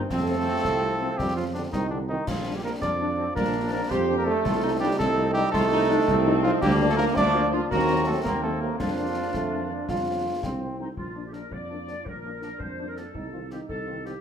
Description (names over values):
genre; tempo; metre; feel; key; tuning
military-style march for wind band; 110 BPM (dotted quarters); 6/8; straight; Bb major; A4 = 440 Hz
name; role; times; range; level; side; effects
mellow trombone section; sustained chords; 0.0-10.9 s; Eb3 to F4; -32 LUFS; equal; none
mellow cornet; melody; 0.1-14.1 s; D4 to D5; -29 LUFS; equal; none
mellow woodwind section; second line; 0.1-14.2 s; A3 to D5; -32 LUFS; left 2 dB; none
warm euphonium; second line; 0.1-14.2 s; D3 to F4; -29 LUFS; right 4 dB; none
mellow tuba; bass; 0.1-14.1 s; Bb1 to F2; -29 LUFS; right 2 dB; none
concert snare drum, clash cymbals and concert bass drum; drums; 0.1-14.2 s; none; -33 LUFS; left 2 dB; none
mellow French horn section; accompaniment; 0.3-14.1 s; Eb3 to Eb4; -33 LUFS; left 5 dB; none
room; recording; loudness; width
wet large studio reverb, RT60 0.8 s; minimal, uncompressed stereo recording; -22 LUFS; side -8 dB against mid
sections
0.0-11.0 A section; 11.0-14.2 A section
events
none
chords
0.1 F; 2.3 Bb; 4.4 F7/C; 6.6 Bb/D; 7.7 Cm7b5/Eb; 8.8 Bb/F; 9.9 F; 11.0 Bb; 13.1 F7/C